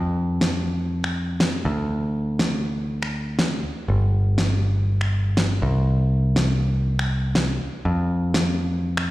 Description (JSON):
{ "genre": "nu-disco, nu disco", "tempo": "121 BPM", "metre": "4/4", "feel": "swing 54% on 16ths", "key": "unclear", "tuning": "A4 = 441 Hz", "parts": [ { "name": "picked electric bass", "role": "bass", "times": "0.0-9.1 s", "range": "G1 to F2", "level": "-21 LUFS", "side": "equal", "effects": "none" }, { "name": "electronic snare drum and finger snaps", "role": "drums", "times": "0.4-9.1 s", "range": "none", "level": "-25 LUFS", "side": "equal", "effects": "studio reverb" } ], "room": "moderate echo chamber reverb, RT60 2.1 s", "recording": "played on a big sound system in a bare room, stone room reverb", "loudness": "-20 LUFS", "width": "side -17 dB against mid", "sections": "0.0-9.1 A section", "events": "none", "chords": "none" }